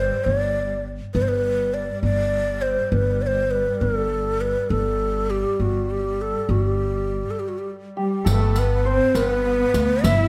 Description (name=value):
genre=Persian modal ensemble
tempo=68 BPM (dotted quarters)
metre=6/8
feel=straight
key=G dastgah mahur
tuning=A4 = 439 Hz
part: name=breathy low ney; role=melody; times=0.0-10.3 s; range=F#4 to E5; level=-25 LUFS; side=equal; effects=none
part: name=upright bass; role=bass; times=0.0-10.3 s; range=G1 to D2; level=-26 LUFS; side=equal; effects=none
part: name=warm duduk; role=drone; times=0.0-8.3 s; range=G3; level=-35 LUFS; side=equal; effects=none
part: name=dark symphonic cello section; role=second line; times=8.0-10.3 s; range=G3 to E4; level=-28 LUFS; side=equal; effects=none
part: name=santur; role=second line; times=8.0-10.3 s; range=G4 to E5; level=-31 LUFS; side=equal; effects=none
part: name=riq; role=percussion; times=8.3-10.2 s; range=none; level=-30 LUFS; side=equal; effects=none
room=light reverb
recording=none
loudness=-22 LUFS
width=mono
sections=0.0-8.3 A section; 8.3-10.3 B section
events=break 7.4-8.3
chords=none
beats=0.26 | 1.15 2.04 | 2.93 3.82 | 4.71 5.59 | 6.48 7.37 | 8.26 9.14 | 10.03